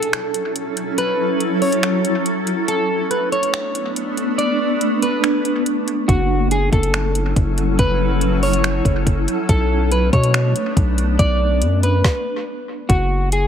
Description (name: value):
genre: hip hop, atmospheric cloud-rap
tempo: 141 BPM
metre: 4/4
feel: half-time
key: F# minor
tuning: A4 = 440 Hz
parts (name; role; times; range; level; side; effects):
- electric guitar at the edge of break-up; melody; 0.0-13.5 s; F#4 to D5; -22 LUFS; equal; low-pass filter, analog delay
- granular cloud pad; sustained chords; 0.0-13.5 s; F#3 to A4; -21 LUFS; equal; built-in reverb, sidechain pumping
- smooth R&B drum kit; drums; 0.0-13.4 s; finger snaps, hi-hat, kick drum, snare drum; -20 LUFS; equal; analog delay
- long sustained 808-style bass; bass; 6.1-13.5 s; F#1 to B2; -18 LUFS; equal; none
room: digital ambience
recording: echo-heavy mix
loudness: -16 LUFS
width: side -8 dB against mid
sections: 0.0-12.9 A section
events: break 0.0-6.1; stop 12.0-12.9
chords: 0.0 F#m7; 2.7 Bm7; 6.1 F#m7; 9.5 Bm7; 12.9 F#m7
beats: 0.13 0.56 | 0.98 1.41 1.83 2.26 | 2.68 3.11 3.54 3.96 | 4.39 4.81 5.24 5.66 | 6.09 6.51 6.94 7.37 | 7.79 8.22 8.64 9.07 | 9.49 9.92 10.34 10.77 | 11.20 11.62 12.05 12.47 | 12.90 13.32